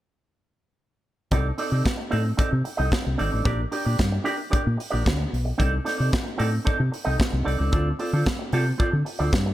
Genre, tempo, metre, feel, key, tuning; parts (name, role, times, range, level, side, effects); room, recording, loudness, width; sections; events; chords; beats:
disco; 112 BPM; 4/4; straight; C dorian; A4 = 439 Hz
electric guitar with an envelope filter; accompaniment; 1.3-9.5 s; C4 to Eb5; -27 LUFS; right 2 dB
fingered electric bass; bass; 1.3-9.5 s; Ab1 to D3; -23 LUFS; equal
modern studio drum kit; drums; 1.3-9.5 s; hi-hat, kick drum, snare drum; -26 LUFS; equal; gated reverb
studio reverb; -22 LUFS; side -14 dB against mid
1.3-9.5 A section
1.3 Cm69; 3.5 Bb6; 5.6 Cm69; 7.7 Dm7
| 1.32 1.85 2.39 2.92 | 3.46 3.99 4.52 5.05 | 5.59 6.12 6.66 7.19 | 7.72 8.26 8.79 9.33